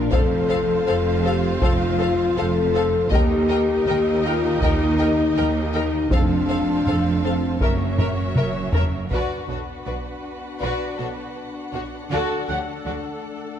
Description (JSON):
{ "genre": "cinematic, epic orchestral film score", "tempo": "80 BPM", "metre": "4/4", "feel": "straight", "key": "unclear", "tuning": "A4 = 440 Hz", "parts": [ { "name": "dark French horn section", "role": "sustained chords", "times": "0.0-13.6 s", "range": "A3 to A4", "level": "-24 LUFS", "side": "left 4 dB", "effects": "none" }, { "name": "rich symphonic string section", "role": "sustained chords", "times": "0.0-13.6 s", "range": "C4 to F#5", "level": "-29 LUFS", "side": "equal", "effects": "none" }, { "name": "rich studio cello section", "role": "bass", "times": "0.0-12.9 s", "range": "Eb2 to D3", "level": "-28 LUFS", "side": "right 4 dB", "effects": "none" }, { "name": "rich studio double bass section", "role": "bass", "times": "0.0-12.9 s", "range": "F1 to Eb2", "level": "-27 LUFS", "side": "right 3 dB", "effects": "none" }, { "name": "warm symphonic violin section", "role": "melody", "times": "0.1-12.9 s", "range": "C#5 to G5", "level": "-34 LUFS", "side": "left 4 dB", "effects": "none" }, { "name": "warm symphonic violin section", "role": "second line", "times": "0.1-13.0 s", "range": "F#4 to Eb5", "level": "-32 LUFS", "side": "left 3 dB", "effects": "none" }, { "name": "clear symphonic viola section", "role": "accompaniment", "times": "0.1-12.9 s", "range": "F#4 to F#5", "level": "-31 LUFS", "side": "right 1 dB", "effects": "none" }, { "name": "solo taiko drums", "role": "drums", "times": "0.1-10.6 s", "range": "none", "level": "-23 LUFS", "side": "equal", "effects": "none" } ], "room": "moderate concert hall reverb, RT60 2.1 s", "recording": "dark, warm production", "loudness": "-19 LUFS", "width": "side -9 dB against mid", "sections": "0.0-9.1 A section; 9.1-13.6 B section", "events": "drum fill 8.0-9.1", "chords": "0.1 F; 3.1 Eb; 6.1 F; 7.6 Gb7; 9.1 Bm; 12.1 D" }